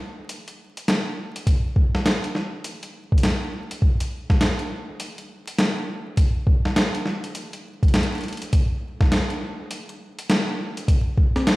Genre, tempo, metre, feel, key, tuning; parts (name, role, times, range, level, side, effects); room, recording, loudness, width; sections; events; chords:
glitch hop; 102 BPM; 4/4; swing 62% on 16ths
boom bap sampler-style drum kit; drums; 0.3-11.6 s; hi-hat, snare drum; -24 LUFS; equal
electronic kick drum; drums; 1.5-11.3 s; -18 LUFS; equal
moderate plate reverb, RT60 2.2 s; played on a big sound system in a bare room, stone room reverb, vinyl crackle; -20 LUFS; side -20 dB against mid
0.0-11.6 A section
build-up 0.0-11.6